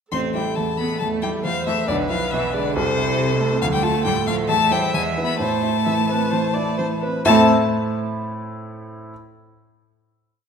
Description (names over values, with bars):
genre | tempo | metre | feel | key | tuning
quick classical-period movement for piano quartet | 127-139 BPM | 4/4 | rubato | A minor | A4 = 439 Hz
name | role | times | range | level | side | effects
rich violin | melody | 0.1-7.5 s | C5 to C6 | -23 LUFS | left 8 dB | none
clear cello | second line | 0.1-7.5 s | C3 to C4 | -25 LUFS | right 4 dB | none
rich viola | accompaniment | 0.1-7.5 s | C4 to E5 | -26 LUFS | right 2 dB | none
warm baby grand piano | accompaniment | 0.1-9.1 s | A1 to E5 | -22 LUFS | right 1 dB | none
room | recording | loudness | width
wet scoring stage reverb, RT60 1.8 s | minimal, uncompressed stereo recording | -18 LUFS | side -7 dB against mid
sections
0.1-7.3 A section; 7.3-9.1 final chord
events
none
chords
0.1 Am; 1.9 E/B; 2.8 Am/C; 3.6 Dm; 4.5 Am/E; 4.9 E; 5.4 Am